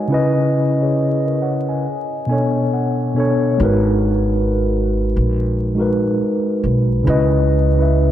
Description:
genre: lo-fi hip hop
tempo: 69 BPM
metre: 4/4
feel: swing 61% on 16ths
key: G# minor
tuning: A4 = 440 Hz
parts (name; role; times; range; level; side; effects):
- mellow tine electric piano; accompaniment; 0.0-8.1 s; B2 to G#5; -16 LUFS; equal; medium stereo tremolo, cassette tape, low-pass filter
- upright bass; bass; 3.6-8.1 s; G#1 to C#2; -18 LUFS; equal; none
room: moderate lush hall reverb, RT60 3.1 s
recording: dreamy mix soaked in reverb, vinyl crackle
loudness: -15 LUFS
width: side -11 dB against mid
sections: 0.0-8.1 A section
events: none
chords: 0.1 C#m9; 1.9 Bm9; 3.6 G#m9; 7.1 C#m9

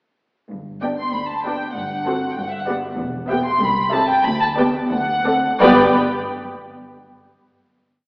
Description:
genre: quick classical-period movement for string orchestra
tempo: 85-98 BPM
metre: 2/4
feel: rubato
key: G major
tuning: A4 = 442 Hz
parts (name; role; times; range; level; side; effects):
- muted symphonic cello section; bass; 0.5-6.0 s; C2 to G2; -28 LUFS; equal; none
- muted symphonic double bass section; bass; 0.5-6.0 s; E1 to D2; -32 LUFS; equal; none
- muted symphonic violin section; melody; 0.8-6.0 s; E5 to C6; -20 LUFS; equal; none
- muted symphonic violin section; second line; 0.8-6.0 s; G4 to E5; -21 LUFS; equal; none
- muted symphonic viola section; accompaniment; 0.8-6.0 s; B3 to A4; -21 LUFS; equal; none
room: wet concert hall reverb, RT60 1.9 s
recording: heard from further back in the room, AM radio sound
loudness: -16 LUFS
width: side -36 dB against mid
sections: 0.5-5.6 A section; 5.6-6.9 final chord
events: none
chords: 0.5 G; 1.8 F#dim/G; 2.4 G; 3.0 Em; 3.6 Am7/C; 4.3 G/D; 4.9 D7; 5.6 G

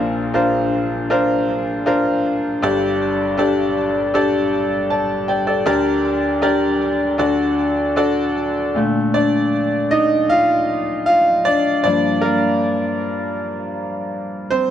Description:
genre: pop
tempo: 79 BPM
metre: 4/4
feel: straight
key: G minor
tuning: A4 = 436 Hz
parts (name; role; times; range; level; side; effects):
- bright grand piano; solo; 0.0-14.7 s; G1 to A5; -16 LUFS; equal; digital delay
room: moderate plate reverb, RT60 2.7 s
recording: dark, warm production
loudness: -16 LUFS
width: side -10 dB against mid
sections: 0.0-8.8 A section; 8.8-14.7 B section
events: grand piano solo 8.8-14.7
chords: 0.0 Bbadd9; 2.6 Gsus2; 5.7 Gm/D; 7.2 D; 8.8 Bbmaj7; 11.8 Gm7

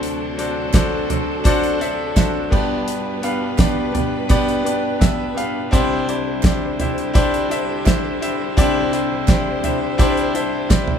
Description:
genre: piano-driven pop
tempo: 84 BPM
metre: 4/4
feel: straight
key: C major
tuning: A4 = 440 Hz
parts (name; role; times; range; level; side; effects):
- clear concert grand piano; accompaniment; 0.0-11.0 s; G1 to F5; -19 LUFS; left 1 dB; none
- clear studio string section; sustained chords; 0.0-11.0 s; B2 to C5; -29 LUFS; right 1 dB; none
- damped 70s drum kit; drums; 0.0-11.0 s; crash cymbal, hi-hat, kick drum, snare drum, toms; -18 LUFS; right 1 dB; none
- group handclap; percussion; 0.7-10.9 s; none; -36 LUFS; right 6 dB; none
room: moderate large studio reverb, RT60 0.8 s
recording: band playing live in one room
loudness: -16 LUFS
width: side -8 dB against mid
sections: 0.0-11.0 A section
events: none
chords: 0.0 D7; 2.5 G; 5.7 Cadd9

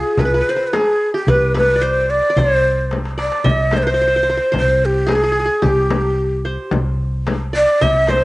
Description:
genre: Arabic maqam ensemble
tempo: 110 BPM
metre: 4/4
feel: straight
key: C maqam suznak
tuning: A4 = 441 Hz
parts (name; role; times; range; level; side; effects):
- breathy ney; melody; 0.0-8.2 s; G4 to Eb5+48c; -16 LUFS; equal; cassette tape
- qanun; second line; 0.0-8.2 s; F4 to E5-50c; -22 LUFS; right 1 dB; cassette tape
- woody fretless electric bass; bass; 0.2-8.2 s; C2; -20 LUFS; equal; none
- darbuka; percussion; 0.2-8.2 s; none; -25 LUFS; equal; none
- frame drum; percussion; 0.2-8.2 s; none; -23 LUFS; left 3 dB; none
room: light reverb, small room ambience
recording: home recording on cassette, nothing above 10.6 kHz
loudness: -14 LUFS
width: side -20 dB against mid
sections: 0.0-3.5 A section; 3.5-8.2 B section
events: drum fill 2.9-3.5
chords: none

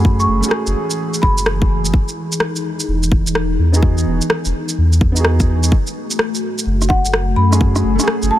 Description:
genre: future garage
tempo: 127 BPM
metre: 4/4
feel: swing 64% on 16ths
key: F# dorian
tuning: A4 = 440 Hz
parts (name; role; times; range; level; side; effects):
- marimba with medium mallets; melody; 0.0-1.6, 6.9-8.4 s; F#5 to C#6; -22 LUFS; equal; tape echo
- felt-muted upright piano; accompaniment; 0.0-8.4 s; A3 to G#4; -23 LUFS; right 3 dB; sidechain pumping, tape echo
- dark analog pad; sustained chords; 0.0-8.4 s; E3 to G#4; -23 LUFS; left 1 dB; chorus, sidechain pumping
- warm sub bass; bass; 0.0-8.3 s; E1 to F#2; -16 LUFS; equal; tube saturation, sidechain pumping
- electronic kick drum; drums; 0.0-7.7 s; none; -15 LUFS; equal; none
- electronic shaker and rim click; drums; 0.2-8.3 s; none; -20 LUFS; equal; none
room: light reverb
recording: none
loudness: -14 LUFS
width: side -13 dB against mid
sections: 0.0-8.4 A section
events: none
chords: 0.0 F#madd9; 1.9 Emaj7; 5.7 F#madd9

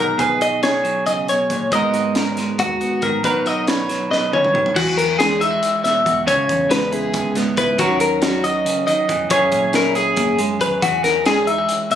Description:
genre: math rock and midwest emo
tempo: 277 BPM (eighths)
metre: 7/8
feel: straight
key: B major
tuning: A4 = 440 Hz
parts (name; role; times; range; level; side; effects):
- clean electric guitar; accompaniment; 0.0-12.0 s; G#2 to B4; -21 LUFS; right 4 dB; spring reverb
- twelve-string electric guitar; arpeggios; 0.0-12.0 s; F#4 to E5; -18 LUFS; left 2 dB; none
- hollow-body short-scale fingered electric bass; bass; 0.0-11.7 s; G#1 to A#2; -31 LUFS; left 2 dB; none
- crisp fusion drum kit; drums; 0.2-12.0 s; crash cymbal, hi-hat, kick drum, snare drum, toms; -24 LUFS; equal; none
room: moderate small room reverb, RT60 0.5 s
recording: recorded on a phone in the room, studio ambience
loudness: -16 LUFS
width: side -9 dB against mid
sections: 0.0-4.8 A section; 4.8-12.0 B section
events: drum fill 4.1-4.8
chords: 0.0 B6; 1.7 G#m9; 3.2 Bmaj9; 4.8 Eadd9(#11); 6.3 C#m7; 7.8 D#m7; 9.3 F#9; 10.8 Eadd9(#11)

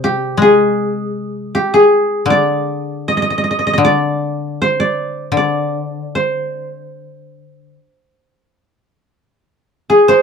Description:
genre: japanese traditional, Japanese chamber music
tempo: 68-80 BPM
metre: 4/4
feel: rubato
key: C hirajoshi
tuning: A4 = 439 Hz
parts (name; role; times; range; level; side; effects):
- koto; melody; 0.0-10.2 s; G4 to C6; -13 LUFS; equal; none
- koto; accompaniment; 0.0-7.8 s; C3 to Ab3; -19 LUFS; left 4 dB; none
room: light reverb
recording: dark, warm production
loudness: -13 LUFS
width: side -6 dB against mid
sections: 0.0-9.5 A section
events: none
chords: none

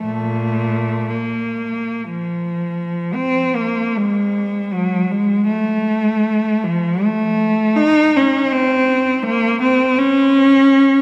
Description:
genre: classical, free, expressive piece for unaccompanied cello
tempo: 48-83 BPM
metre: 3/4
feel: rubato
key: Bb minor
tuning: A4 = 435 Hz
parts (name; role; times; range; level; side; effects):
- rich cello; solo; 0.0-11.0 s; Bb2 to Eb4; -17 LUFS; equal; none
room: wet church reverb, RT60 3.3 s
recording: none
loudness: -17 LUFS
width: mono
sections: 0.0-3.2 A section; 3.2-11.0 B section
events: none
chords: none

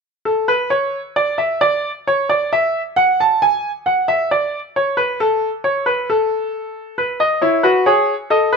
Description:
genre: classical, baroque-style 3-part fugue for grand piano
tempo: 67 BPM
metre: 4/4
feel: straight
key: unclear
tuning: A4 = 438 Hz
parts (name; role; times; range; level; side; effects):
- clear concert grand piano; solo; 0.3-8.6 s; E4 to A5; -15 LUFS; equal; none
room: moderate stone room reverb, RT60 1.0 s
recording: minimal, uncompressed stereo recording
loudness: -15 LUFS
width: side -4 dB against mid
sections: 0.0-8.6 A section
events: none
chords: 0.0 N.C.; 7.0 E

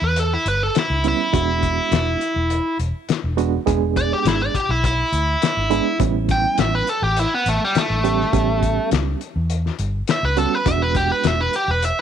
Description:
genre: straight-eighth soul blues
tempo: 103 BPM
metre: 4/4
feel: straight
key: unclear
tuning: A4 = 438 Hz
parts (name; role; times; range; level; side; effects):
- biting overdriven guitar; melody; 0.0-12.0 s; G3 to G5; -20 LUFS; equal; none
- vintage muted fingered electric bass; bass; 0.0-11.9 s; E1 to E2; -22 LUFS; equal; none
- cloth-damped thuddy drum kit; drums; 0.2-12.0 s; hi-hat, kick drum, snare drum; -23 LUFS; left 6 dB; none
- barky reed electric piano; accompaniment; 1.0-11.5 s; G3 to G#4; -22 LUFS; right 14 dB; tremolo
room: little or no reverb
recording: 1960s-style stereo with parts hard left and right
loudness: -17 LUFS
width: side -8 dB against mid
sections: 0.0-12.0 A section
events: overdriven electric guitar solo 0.0-12.0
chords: 0.0 A7 (rootless); 1.3 E7; 6.0 A7; 10.7 E7

